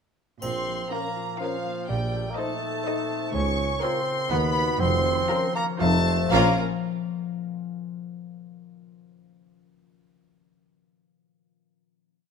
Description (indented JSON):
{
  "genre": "cinematic, playful, whimsical film cue",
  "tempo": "122 BPM",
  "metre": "3/4",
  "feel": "straight",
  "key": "Bb minor",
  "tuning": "A4 = 440 Hz",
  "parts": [
    { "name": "rich chamber violin section", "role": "melody", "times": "0.4-6.6 s", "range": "F5 to Db6", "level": "-31 LUFS", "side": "left 3 dB", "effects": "none" },
    { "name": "warm bassoon", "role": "accompaniment", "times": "0.4-6.5 s", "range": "F3 to Db4", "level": "-28 LUFS", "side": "right 4 dB", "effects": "none" },
    { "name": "concert harp", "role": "arpeggios", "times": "0.4-7.8 s", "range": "Bb2 to F5", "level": "-30 LUFS", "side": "left 10 dB", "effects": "none" },
    { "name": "clear symphonic cello section", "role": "bass", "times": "0.4-6.6 s", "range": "Db2 to Bb2", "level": "-31 LUFS", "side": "right 3 dB", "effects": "none" },
    { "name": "rich chamber double bass section", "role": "bass", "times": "0.4-6.6 s", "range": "F1 to D#2", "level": "-30 LUFS", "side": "right 4 dB", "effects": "none" },
    { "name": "warm tuba", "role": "bass", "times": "0.4-6.5 s", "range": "F1 to D#2", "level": "-31 LUFS", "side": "right 5 dB", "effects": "none" },
    { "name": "triangle", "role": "percussion", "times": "0.4-1.4 s", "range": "none", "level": "-47 LUFS", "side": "equal", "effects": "none" },
    { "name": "rich chamber violin section", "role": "second line", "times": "0.9-6.6 s", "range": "Bb4 to Bb5", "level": "-31 LUFS", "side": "left 2 dB", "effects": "none" },
    { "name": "rich studio viola section", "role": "accompaniment", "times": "0.9-6.6 s", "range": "Db4 to Bb4", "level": "-32 LUFS", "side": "right 2 dB", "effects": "none" },
    { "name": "mellow French horn section", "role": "sustained chords", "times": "0.9-6.5 s", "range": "Db4 to C5", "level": "-35 LUFS", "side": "left 5 dB", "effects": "none" }
  ],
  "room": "light reverb",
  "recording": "close, detailed microphones",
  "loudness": "-23 LUFS",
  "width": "side -6 dB against mid",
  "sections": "0.4-6.3 A section; 6.3-7.8 final chord",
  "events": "none",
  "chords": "0.4 Bbm; 1.9 Adim/Bb; 3.3 Bbm/Db; 4.3 B/D#; 4.8 Bbm/F; 5.8 F7; 6.3 Bbm"
}